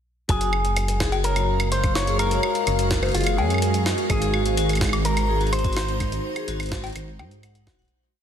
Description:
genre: IDM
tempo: 126 BPM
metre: 4/4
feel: straight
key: Gb lydian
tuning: A4 = 440 Hz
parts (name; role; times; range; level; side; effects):
- electric guitar with an envelope filter; melody; 0.3-7.4 s; F4 to Db5; -27 LUFS; left 1 dB; tape echo
- icy glass pad; sustained chords; 0.9-7.9 s; Ab3 to F5; -28 LUFS; right 1 dB; chorus, built-in reverb
- vibraphone with hard mallets; arpeggios; 0.3-7.9 s; Gb4 to Gb5; -31 LUFS; left 6 dB; ping-pong delay
- dark detuned saw bass; bass; 0.3-7.8 s; Eb1 to Ab2; -24 LUFS; equal; none
- electronic kick drum; drums; 0.3-7.8 s; none; -26 LUFS; equal; studio reverb
- jungle sampler-style drum kit; drums; 0.3-7.9 s; cowbell, hi-hat, snare drum, woodblock; -28 LUFS; equal; studio reverb
room: moderate lush hall reverb, RT60 2.0 s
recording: dense, heavily limited modern master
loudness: -20 LUFS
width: side -9 dB against mid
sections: 0.3-7.9 groove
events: fade-out 5.4-7.9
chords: 0.3 Gbmaj9; 4.1 Ab7

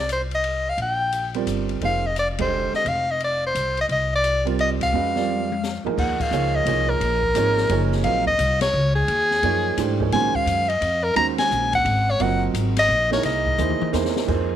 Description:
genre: modal jazz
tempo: 173 BPM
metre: 3/4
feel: swing 64% on 8ths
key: F dorian, Eb dorian from 6.0 s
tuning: A4 = 441 Hz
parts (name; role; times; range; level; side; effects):
- clear soprano saxophone; melody; 0.0-13.9 s; Ab4 to Bb5; -21 LUFS; left 1 dB; none
- upright bass; bass; 0.0-14.6 s; F1 to Bb2; -26 LUFS; left 1 dB; none
- open jazz drum kit; drums; 0.1-14.4 s; crash cymbal, hi-hat, kick drum, ride cymbal, snare drum, toms; -31 LUFS; left 7 dB; none
- warm grand piano; accompaniment; 1.3-14.6 s; D3 to Eb5; -25 LUFS; right 11 dB; none
room: light reverb, small room ambience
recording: 1960s-style stereo with parts hard left and right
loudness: -19 LUFS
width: side -10 dB against mid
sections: 0.0-6.0 A section; 6.0-14.3 B section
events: band accent 2.3, 4.8, 6.1, 8.6, 11.3; drum fill 5.3-6.0, 13.6-14.3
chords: 0.0 F9sus4; 6.0 Ebm11; 13.2 C7alt

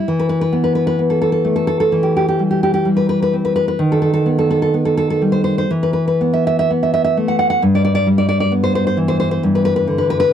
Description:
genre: romantic piece for solo classical guitar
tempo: 58-68 BPM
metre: 4/4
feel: rubato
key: E minor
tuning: A4 = 436 Hz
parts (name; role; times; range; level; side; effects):
- nylon-string guitar; solo; 0.0-10.3 s; G2 to F#5; -14 LUFS; equal; none
room: light reverb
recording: dry, close 1970s-style studio recording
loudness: -14 LUFS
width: side -9 dB against mid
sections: 0.1-10.3 A section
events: none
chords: 0.1 Em; 3.8 B/D#; 5.7 E5; 7.6 G

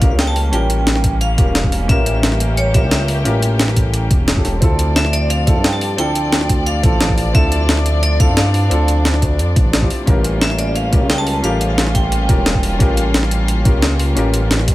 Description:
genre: liquid drum and bass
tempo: 176 BPM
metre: 4/4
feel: straight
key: unclear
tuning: A4 = 442 Hz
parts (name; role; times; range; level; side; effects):
- vibraphone with hard mallets; melody; 0.0-14.7 s; C#5 to A5; -23 LUFS; right 1 dB; digital delay
- dark grand piano; accompaniment; 0.0-14.7 s; C4 to Bb4; -23 LUFS; left 1 dB; digital delay
- dark studio string section; sustained chords; 0.0-14.7 s; F3 to D5; -25 LUFS; left 1 dB; none
- smooth synth bass; bass; 0.0-14.7 s; E1 to G2; -17 LUFS; equal; none
- breakbeat sampler-style drum kit; drums; 0.0-14.7 s; hi-hat, snare drum; -19 LUFS; equal; small room ambience
- electronic kick drum; drums; 0.0-14.7 s; none; -15 LUFS; equal; small room ambience
room: studio reverb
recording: none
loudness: -13 LUFS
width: side -16 dB against mid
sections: 0.0-14.7 A section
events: none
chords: 0.0 A7b9b13; 4.6 Dm9; 10.1 A7b9b13

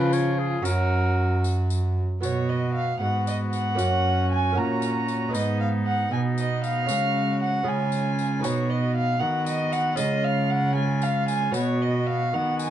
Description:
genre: classical, renaissance-style consort dance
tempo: 77 BPM (dotted quarters)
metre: 6/8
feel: straight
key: unclear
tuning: A4 = 439 Hz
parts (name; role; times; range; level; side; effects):
- clear oboe; melody; 0.0-12.7 s; D#4 to C#5; -34 LUFS; left 2 dB; none
- dark violin; second line; 0.0-12.7 s; E#4 to A#5; -27 LUFS; right 1 dB; none
- lute; accompaniment; 0.0-12.7 s; F#2 to B4; -31 LUFS; right 3 dB; none
- warm viola; accompaniment; 0.0-12.7 s; E#3 to C#4; -31 LUFS; left 3 dB; none
- warm cello; bass; 0.0-12.7 s; F#2 to D#3; -26 LUFS; right 1 dB; none
- tambourine; percussion; 0.1-12.7 s; none; -39 LUFS; left 6 dB; none
room: moderate stone room reverb, RT60 1.0 s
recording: dark, warm production, nothing above 10.6 kHz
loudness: -22 LUFS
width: side -11 dB against mid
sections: 0.0-2.2 A section; 2.2-12.7 B section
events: none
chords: 0.0 C#; 0.7 F#; 2.2 B5; 3.8 F#; 5.3 G#m; 6.9 C#sus4; 8.4 B; 10.0 C#; 11.5 B

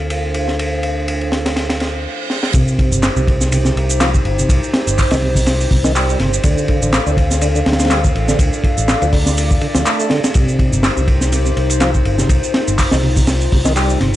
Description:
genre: breakbeat, breaks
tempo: 123 BPM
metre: 4/4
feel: swing 55% on 16ths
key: C dorian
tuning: A4 = 440 Hz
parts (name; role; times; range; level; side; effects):
- dark analog pad; sustained chords; 0.0-14.2 s; D4 to F5; -21 LUFS; equal; lush chorus, sidechain pumping
- picked electric bass; bass; 0.0-14.2 s; G1 to D2; -18 LUFS; equal; tube saturation
- crunchy breakbeat drum kit; drums; 0.0-14.1 s; hi-hat, kick drum, ride cymbal, snare drum; -17 LUFS; equal; high-pass filter on kick, high-pass filter on cymbals, high-pass filter on hats, high-pass filter on snare, high-pass filter on room
- reverse cymbal; sound effects; 1.8-2.5 s; none; -26 LUFS; right 7 dB; none
- percussive tonewheel organ; riff; 2.5-14.1 s; C3 to A3; -21 LUFS; equal; overdrive, chorus vibrato, slow rotary speaker, tube saturation, ping-pong delay
- electronic shaker and handclaps; drums; 2.5-14.0 s; none; -22 LUFS; right 1 dB; none
room: small room ambience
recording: nothing above 11.0 kHz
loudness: -13 LUFS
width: side -14 dB against mid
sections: 0.0-2.5 A section; 2.5-14.2 B section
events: filter sweep on analog synth pad 0.0-2.5; reverse cymbal 1.8-2.5; drum fill 2.3; drop 2.5-14.2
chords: 0.0 Dm7; 2.5 Cm; 6.4 Dm7; 10.3 Cm

